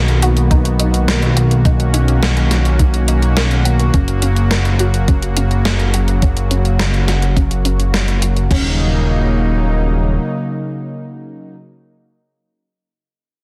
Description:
synthwave; 105 BPM; 4/4; straight; Eb minor; A4 = 440 Hz
brassy analog pad; sustained chords; 0.0-11.6 s; Db3 to F#4; -23 LUFS; equal; chorus, sidechain pumping
analog pluck; arpeggios; 0.0-8.8 s; Db4 to A#4; -28 LUFS; equal; chorus, digital delay
fat analog bass; bass; 0.0-10.2 s; Eb1 to B1; -17 LUFS; equal; tube saturation
gated 80s digital drum machine; drums; 0.1-8.6 s; crash cymbal, hi-hat, snare drum; -23 LUFS; equal; gated reverb, gated reverb snare
electronic kick drum; drums; 0.5-8.6 s; -16 LUFS; equal
light reverb; dense, heavily limited modern master; -15 LUFS; mono
0.0-8.5 A section; 8.5-10.8 B section
filter sweep on analog synth bass 0.0-8.5; filter sweep on synth arpeggio sound 0.0-8.5
0.0 Bmaj7; 3.9 Gb; 8.5 Ebm7

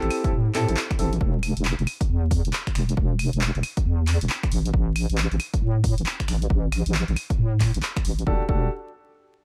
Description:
UK garage, two-step garage; 136 BPM; 4/4; swing 63% on 16ths; E minor; A4 = 440 Hz
warm concert grand piano; stabs; 0.0-1.1, 8.3-8.7 s; C4 to A4; -30 LUFS; equal; vintage 12-bit sampler grit, tape echo
deep soft wobble bass; bass; 0.0-8.7 s; E1 to A2; -25 LUFS; equal; chorus
punchy analog drum machine; drums; 0.0-8.3 s; claves, finger snaps, handclaps, hi-hat; -32 LUFS; equal
electronic kick drum; drums; 0.2-8.6 s; -27 LUFS; equal
digital ambience; vinyl crackle; -24 LUFS; mono
0.0-8.3 A section; 8.3-9.4 B section
0.0 Am7; 1.2 N.C.; 8.3 Em11

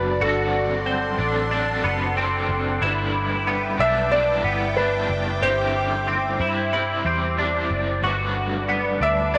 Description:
dream pop; 92 BPM; 4/4; straight; A4 = 440 Hz
felt-muted upright piano; melody; 0.0-9.4 s; A4 to E5; -26 LUFS; equal
overdriven semi-hollow guitar; accompaniment; 0.0-9.4 s; G2 to B4; -30 LUFS; equal; tremolo, lush chorus
phased analog pad; sustained chords; 0.0-9.4 s; F#4 to D6; -30 LUFS; equal; phaser, chorus
twelve-string electric guitar; arpeggios; 0.0-9.4 s; B3 to G4; -27 LUFS; equal; ensemble chorus, tape echo
vintage muted picked electric bass; bass; 0.0-9.4 s; F#1 to G2; -30 LUFS; equal
light reverb, digital ambience; dry, gritty hardware recording, transformer saturation; -22 LUFS; mono
0.0-9.4 A section
0.2 D7/G; 2.8 Em7/G; 5.4 Cadd9/G; 8.0 Gmaj7

